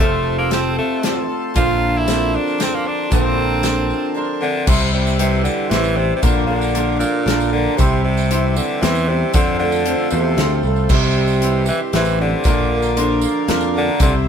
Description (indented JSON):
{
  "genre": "folk rock and heartland rock",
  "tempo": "116 BPM",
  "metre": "3/4",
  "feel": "straight",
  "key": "unclear",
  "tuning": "A4 = 441 Hz",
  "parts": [
    { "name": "raspy tenor saxophone", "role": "melody", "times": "0.0-14.1 s", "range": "Bb2 to F4", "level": "-21 LUFS", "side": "equal", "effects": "none" },
    { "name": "bright upright piano", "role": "accompaniment", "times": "0.0-14.3 s", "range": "Bb3 to D5", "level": "-28 LUFS", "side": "right 2 dB", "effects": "none" },
    { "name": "picked steel-string acoustic guitar", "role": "accompaniment", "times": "0.0-14.3 s", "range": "Bb2 to Bb4", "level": "-27 LUFS", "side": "left 3 dB", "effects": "none" },
    { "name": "accordion", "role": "sustained chords", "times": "0.0-14.3 s", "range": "G4 to D6", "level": "-29 LUFS", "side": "equal", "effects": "none" },
    { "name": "electric guitar through a small old amp", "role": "riff", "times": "0.0-14.3 s", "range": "F2 to F4", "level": "-22 LUFS", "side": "right 2 dB", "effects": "phaser" },
    { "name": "picked electric bass", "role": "bass", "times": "0.0-14.3 s", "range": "F1 to F2", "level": "-20 LUFS", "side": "equal", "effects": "none" },
    { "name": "natural country drum kit", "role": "drums", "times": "0.5-14.1 s", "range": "crash cymbal, hi-hat, kick drum, snare drum", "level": "-20 LUFS", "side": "equal", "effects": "none" },
    { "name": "tambourine", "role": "percussion", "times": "1.6-14.1 s", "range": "none", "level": "-33 LUFS", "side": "right 7 dB", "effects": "none" }
  ],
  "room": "light reverb",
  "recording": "band playing live in one room",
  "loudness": "-15 LUFS",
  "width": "side -7 dB against mid",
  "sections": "0.0-4.7 A section; 4.7-14.3 B section",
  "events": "none",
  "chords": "0.0 F; 1.6 Bbadd9; 4.7 C; 6.2 Bb; 7.8 C; 9.3 F; 10.9 C; 12.5 Bb"
}